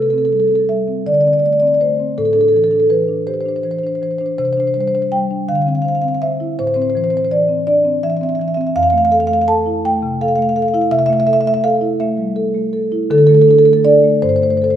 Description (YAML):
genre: classical, contemporary piece for solo marimba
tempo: 54 BPM (dotted quarters)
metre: 6/8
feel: rubato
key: C major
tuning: A4 = 440 Hz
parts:
  - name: marimba with soft mallets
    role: solo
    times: 0.0-14.8 s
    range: F2 to A5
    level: -13 LUFS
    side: equal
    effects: none
room: wet recital hall reverb, RT60 1.4 s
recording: recorded in a church or concert hall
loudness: -13 LUFS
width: side -10 dB against mid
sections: 0.0-14.8 A section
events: none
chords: 0.0 C5; 1.1 D5; 2.2 Am7; 4.4 Csus2; 5.5 Dm9; 6.6 Amadd11; 8.7 Fmaj7; 10.9 C6; 13.1 D5; 14.2 Gsus4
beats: 1.06 | 2.16 3.27 | 4.38 5.49 | 6.59 7.67 | 8.74 9.83 | 10.91 11.99 | 13.11 14.23